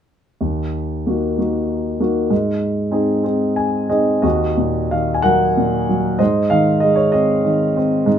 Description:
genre	classical, lyrical solo piano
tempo	63 BPM (dotted quarters)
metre	6/8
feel	uneven beats, rubato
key	Eb minor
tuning	A4 = 439 Hz
part	warm grand piano	solo	0.4-8.2 s	Eb2 to Ab5	-15 LUFS	equal	none
room	moderate studio reverb, RT60 0.5 s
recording	minimal, uncompressed stereo recording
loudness	-15 LUFS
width	side -9 dB against mid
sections	0.4-4.2 A section; 4.2-8.2 B section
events	grand piano fill 3.2-4.2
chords	0.4 Ebm; 2.3 Ab; 4.2 Ebm; 6.2 Ab

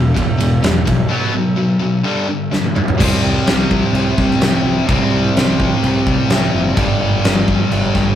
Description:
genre	hard rock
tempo	127 BPM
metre	4/4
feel	straight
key	unclear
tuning	A4 = 440 Hz
part	cranked stack guitar	riff	0.0-8.2 s	E2 to C4	-21 LUFS	right 4 dB	overdrive
part	high-gain distorted guitar	riff	0.0-8.2 s	E2 to C4	-18 LUFS	left 5 dB	distortion
part	fuzz picked electric bass	bass	0.0-8.1 s	E1 to C2	-19 LUFS	equal	overdrive
part	huge arena drum kit	drums	0.2-8.1 s	crash cymbal, kick drum, ride cymbal, snare drum, toms	-17 LUFS	right 1 dB	none
room	moderate studio ambience, RT60 0.5 s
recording	rough rehearsal-room recording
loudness	-13 LUFS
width	side -10 dB against mid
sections	0.0-3.0 A section; 3.0-8.2 B section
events	break 1.1-3.0; drum fill 2.5-3.0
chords	0.0 E5; 1.1 B5; 2.1 G5; 3.0 C5; 6.8 G5

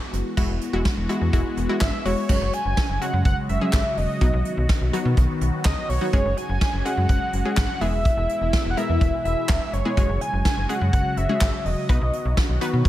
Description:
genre	synth-pop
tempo	125 BPM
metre	4/4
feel	straight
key	unclear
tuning	A4 = 440 Hz
part	phased analog pad	sustained chords	0.0-12.9 s	B2 to F#4	-29 LUFS	left 2 dB	phaser, chorus
part	slap-like FM bass	bass	0.1-12.9 s	E1 to B2	-24 LUFS	equal	none
part	soft brush drum kit	drums	0.1-12.9 s	crash cymbal, handclaps, hi-hat, kick drum, snare drum	-23 LUFS	equal	gated reverb
part	wide unison pluck	accompaniment	0.4-12.9 s	F#3 to B4	-28 LUFS	left 1 dB	none
part	wide unison lead	melody	1.8-12.6 s	C#5 to G#5	-27 LUFS	equal	digital delay
room	light reverb, small room ambience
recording	none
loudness	-20 LUFS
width	side -14 dB against mid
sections	0.4-2.3 A section; 2.3-12.9 B section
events	none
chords	0.4 Eadd9; 2.3 F#sus2; 4.2 B; 6.1 F#sus2; 7.8 E; 10.0 F#sus2; 11.9 B

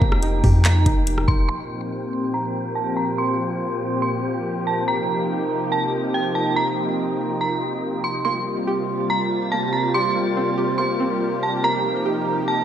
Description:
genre	hip hop, atmospheric cloud-rap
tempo	142 BPM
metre	4/4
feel	half-time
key	G minor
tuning	A4 = 440 Hz
part	dark detuned synth bell	melody	0.0-12.6 s	G5 to C6	-25 LUFS	right 2 dB	chorus, tremolo, low-pass filter, ping-pong delay
part	warm analog pad	sustained chords	0.0-12.6 s	Bb2 to G4	-24 LUFS	equal	chorus, sidechain pumping, low-pass filter
part	string-like resonator pluck	arpeggios	0.0-1.5, 8.3-12.6 s	Bb3 to G4	-30 LUFS	right 3 dB	chorus, ping-pong delay
part	clean 808-style bass	bass	0.0-1.5 s	F1 to F2	-18 LUFS	equal	none
part	smooth R&B drum kit	drums	0.0-1.4 s	handclaps, hi-hat, kick drum, rim click	-20 LUFS	equal	none
part	wind-like tuned noise texture	texture	0.0-12.6 s	F3 to A6	-29 LUFS	equal	built-in reverb
room	wet recital hall reverb, RT60 1.3 s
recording	none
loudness	-19 LUFS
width	side -10 dB against mid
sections	0.0-1.5 A section; 1.5-8.3 B section; 8.3-12.6 C section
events	filter sweep 1.5-8.3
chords	0.0 F9sus4; 1.5 Gm7; 4.9 F9sus4; 8.3 Gm11; 11.6 F9sus4

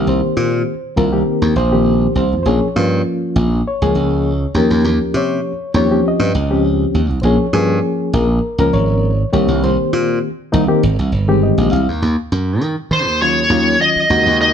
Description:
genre	electric jazz fusion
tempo	100 BPM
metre	4/4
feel	swing 53% on 16ths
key	Bb dorian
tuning	A4 = 440 Hz
part	reed electric piano	accompaniment	0.0-14.5 s	Db3 to F5	-17 LUFS	left 2 dB	fast tremolo
part	glassy slap bass	bass	0.0-14.5 s	G1 to Eb3	-16 LUFS	right 1 dB	none
part	smooth overdriven lead guitar	melody	12.9-14.5 s	C5 to Eb5	-13 LUFS	equal	none
room	moderate large studio reverb, RT60 1.0 s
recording	band playing live in one room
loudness	-13 LUFS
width	side -8 dB against mid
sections	0.0-12.0 A section; 12.0-14.5 B section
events	reed electric piano fill 11.1-12.0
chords	0.0 Cm7; 2.5 Bbm7; 4.6 Eb13; 7.2 Bbm7; 9.3 Cm7; 10.8 Abmaj7; 12.0 Ebm9

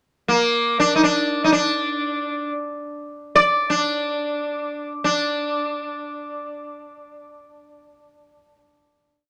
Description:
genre	indian classical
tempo	free time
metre	none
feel	none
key	unclear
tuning	A4 = 439 Hz
part	sitar	solo	0.3-8.6 s	Bb3 to D5	-22 LUFS	equal	none
room	wet studio reverb, RT60 0.5 s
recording	none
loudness	-21 LUFS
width	mono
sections	0.0-5.1 free-time section; 5.1-7.6 final note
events	none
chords	none

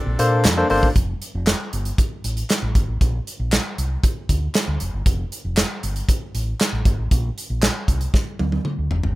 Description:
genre	early-eighties boogie funk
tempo	117 BPM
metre	4/4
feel	straight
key	F major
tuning	A4 = 440 Hz
part	pipe organ, full organ	sustained chords	0.0-0.9 s	C3 to A4	-31 LUFS	left 1 dB	none
part	fingered electric bass	bass	0.1-9.1 s	F1 to Bb2	-23 LUFS	equal	none
part	barky tine electric piano	accompaniment	0.2-0.9 s	Bb3 to C5	-18 LUFS	left 2 dB	none
part	modern studio drum kit	drums	0.2-9.2 s	handclaps, hi-hat, kick drum, snare drum, toms	-20 LUFS	equal	none
room	little or no reverb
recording	rough home demo mix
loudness	-19 LUFS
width	side -18 dB against mid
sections	1.0-9.2 A section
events	drum fill 8.1-9.2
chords	0.0 Bbmaj9; 1.0 Fadd9; 3.0 Bbadd9; 5.1 Fadd9; 7.1 Bbadd9

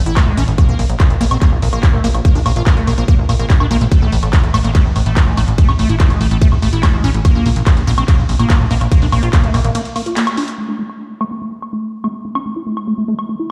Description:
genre	psychedelic trance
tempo	144 BPM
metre	4/4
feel	straight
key	unclear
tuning	A4 = 439 Hz
part	liquid acid bass	riff	0.0-13.5 s	G#3 to F4	-23 LUFS	equal	chorus, sidechain pumping, tape echo
part	plucky analog bass	bass	0.1-9.7 s	A1 to Bb1	-17 LUFS	equal	none
part	techno drum kit	drums	0.1-13.3 s	handclaps, hi-hat, ride cymbal, woodblock	-25 LUFS	equal	low-pass filter on snare, low-pass filter on hats, low-pass filter on perc, low-pass filter on cymbals, low-pass filter on room
part	electronic kick drum	drums	0.2-9.4 s	none	-13 LUFS	equal	none
room	little or no reverb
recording	played on a big sound system in a bare room, stone room reverb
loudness	-14 LUFS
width	mono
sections	0.0-10.6 A section; 10.6-13.5 B section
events	drop 0.0-10.6; break 9.7-10.6; band accent 10.2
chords	0.0 A5; 0.6 Bb5; 3.9 A5; 7.2 Bb5; 10.6 A5

